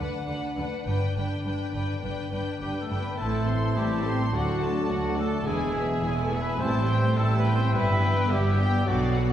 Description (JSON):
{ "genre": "cinematic", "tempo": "105 BPM", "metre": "4/4", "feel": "straight", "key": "A dorian", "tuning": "A4 = 439 Hz", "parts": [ { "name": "rich studio violin section", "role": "melody", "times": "0.0-9.3 s", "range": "D5 to C6", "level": "-36 LUFS", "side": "left 3 dB", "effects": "none" }, { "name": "warm symphonic violin section", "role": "second line", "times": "0.0-9.3 s", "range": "D4 to B4", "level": "-37 LUFS", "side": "left 2 dB", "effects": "none" }, { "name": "dark symphonic viola section", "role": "accompaniment", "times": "0.0-9.3 s", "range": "F#3 to D4", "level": "-35 LUFS", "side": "right 1 dB", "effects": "none" }, { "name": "concert harp", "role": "arpeggios", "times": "0.0-9.3 s", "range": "G2 to A4", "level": "-35 LUFS", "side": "left 2 dB", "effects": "none" }, { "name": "rich symphonic cello section", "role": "bass", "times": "0.0-9.3 s", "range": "D2 to D3", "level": "-31 LUFS", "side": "right 1 dB", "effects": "none" }, { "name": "rich symphonic double bass section", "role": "bass", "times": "0.0-9.3 s", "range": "E1 to D2", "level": "-29 LUFS", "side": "right 1 dB", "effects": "none" }, { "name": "mellow French horn section", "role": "sustained chords", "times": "2.6-9.3 s", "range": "F#3 to C4", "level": "-34 LUFS", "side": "left 1 dB", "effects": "none" }, { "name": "clear trumpet", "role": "stabs", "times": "2.6-9.2 s", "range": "F#4 to C5", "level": "-31 LUFS", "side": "left 1 dB", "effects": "none" }, { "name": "clear clarinet", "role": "second line", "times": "3.2-9.3 s", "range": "A3 to E4", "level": "-37 LUFS", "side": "left 2 dB", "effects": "none" }, { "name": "mellow hollow silver concert flute", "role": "second line", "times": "3.2-9.3 s", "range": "F#5 to A5", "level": "-36 LUFS", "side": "equal", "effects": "none" }, { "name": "warm oboe", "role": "second line", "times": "3.2-9.3 s", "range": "C5 to E5", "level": "-37 LUFS", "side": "right 2 dB", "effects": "none" }, { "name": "bright trombone section", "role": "sustained chords", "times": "3.2-9.3 s", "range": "D3 to C4", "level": "-35 LUFS", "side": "equal", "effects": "none" } ], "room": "wet scoring stage reverb, RT60 1.6 s", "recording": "heard from further back in the room", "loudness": "-23 LUFS", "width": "side -10 dB against mid", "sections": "0.0-3.2 A section; 3.2-9.3 B section", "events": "build-up 0.0-3.2", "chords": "0.0 Bm/D; 0.9 G; 3.2 Am; 4.3 D; 5.5 E; 6.6 Am7; 7.7 Em/G", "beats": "0.28 | 0.87 1.46 2.04 2.62 | 3.20 3.77 4.34 4.91 | 5.48 6.04 6.61 7.18 | 7.74 8.31 8.88" }